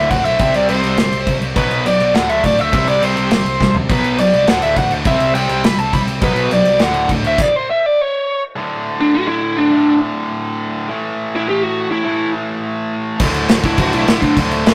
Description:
punk rock; 206 BPM; 4/4; straight; D major from 8.6 s; A4 = 441 Hz
biting lead guitar; melody; 0.0-14.4 s; D4 to B5; -18 LUFS; equal; overdrive
crunchy overdriven guitar; riff; 0.0-7.2, 13.2-14.7 s; D2 to F#4; -25 LUFS; equal
distorted electric guitar; riff; 0.0-7.4, 13.2-14.7 s; D2 to C4; -26 LUFS; equal; overdrive
tight distorted guitar; riff; 0.0-14.7 s; D2 to C4; -24 LUFS; equal; distortion
picked electric bass; bass; 0.0-7.4, 13.2-14.7 s; D1 to D2; -26 LUFS; equal
loose indie drum kit; drums; 0.1-7.5, 13.2-14.7 s; crash cymbal, kick drum, snare drum, toms; -20 LUFS; equal
light reverb; rough rehearsal-room recording, tube saturation; -16 LUFS; mono
0.0-8.6 A section; 8.6-14.7 B section
half time 0.0-8.6; drum fill 3.6; stop 7.4-8.6
0.4 C5; 1.6 Bm; 2.1 D5; 2.7 C5; 3.9 Bm; 4.5 D5; 5.1 C; 6.2 Bm; 6.8 D; 7.4 N.C.; 8.6 D5; 10.9 A5; 13.2 D

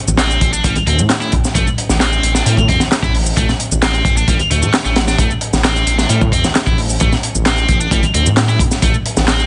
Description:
breakbeat, breaks; 132 BPM; 4/4; straight; A minor; A4 = 445 Hz
dark detuned saw bass; bass; 0.1-9.5 s; A1 to A2; -20 LUFS; equal
electronic shaker and handclaps; drums; 0.1-9.5 s; -25 LUFS; equal
congas; percussion; 0.1-9.3 s; -27 LUFS; equal
scooped high-gain guitar; riff; 0.2-9.5 s; G3 to E4; -21 LUFS; equal; distortion, delay
crunchy breakbeat drum kit; drums; 0.2-9.4 s; hi-hat, kick drum, snare drum; -18 LUFS; equal
little or no reverb; nothing above 10.5 kHz; -14 LUFS; mono
0.0-9.5 A section
0.0 Am

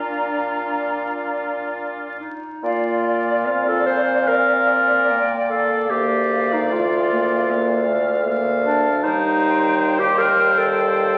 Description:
classical, slow romantic movement for wind quintet; 65-80 BPM; 4/4; rubato; Bb major; A4 = 439 Hz
mellow hollow silver concert flute; melody; 0.0-11.2 s; D5 to Bb5; -29 LUFS; equal
warm oboe; second line; 0.0-11.2 s; F4 to F5; -29 LUFS; equal
mellow French horn; accompaniment; 0.0-11.2 s; G3 to D4; -29 LUFS; equal
warm clarinet; accompaniment; 0.0-11.2 s; D4 to D5; -23 LUFS; equal
warm bassoon; bass; 0.0-11.2 s; D2 to Bb2; -26 LUFS; equal
wet recital hall reverb, RT60 1.3 s; very old 78 rpm record, vinyl crackle; -19 LUFS; mono
0.0-2.6 A section; 2.6-11.2 A section
0.0 Bb; 5.9 Bb/D; 9.0 Cm/Eb

